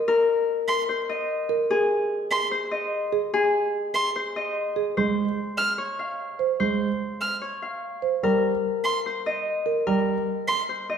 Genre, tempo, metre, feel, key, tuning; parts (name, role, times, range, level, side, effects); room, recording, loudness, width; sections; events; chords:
classical, minimalist pattern music; 147 BPM; 4/4; straight; A4 = 438 Hz
Celtic harp; melody; 0.0-11.0 s; Ab4 to F5; -25 LUFS; left 4 dB
marimba with soft mallets; arpeggios; 0.0-9.9 s; Ab4 to C5; -28 LUFS; right 6 dB
warm violin; arpeggios; 0.7-10.6 s; C6 to F6; -26 LUFS; right 2 dB
dark grand piano; accompaniment; 5.0-10.1 s; G3 to Ab3; -26 LUFS; right 5 dB
wet recital hall reverb, RT60 1.4 s; recorded in a church or concert hall; -22 LUFS; side -7 dB against mid
0.0-11.0 A section
0.0 Cm7; 1.7 Ab; 5.0 Db; 8.2 Ebadd9